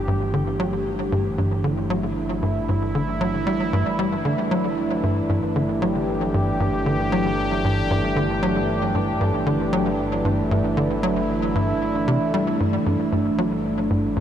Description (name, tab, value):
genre	ambient, sequencer-driven space music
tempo	115 BPM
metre	4/4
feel	straight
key	unclear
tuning	A4 = 439 Hz
part	sweeping resonant pad	sustained chords	0.0-14.2 s	E3 to G4	-23 LUFS	right 1 dB	chorus
part	fat analog bass	bass	0.0-14.2 s	G1	-31 LUFS	equal	none
part	tight sequencer bass	riff	0.1-14.2 s	G2 to G3	-23 LUFS	equal	wide subtle chorus, tape echo
room	wet huge ambient reverb, RT60 7.9 s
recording	dark, warm production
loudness	-20 LUFS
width	side -10 dB against mid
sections	0.0-14.2 A section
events	none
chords	0.0 G5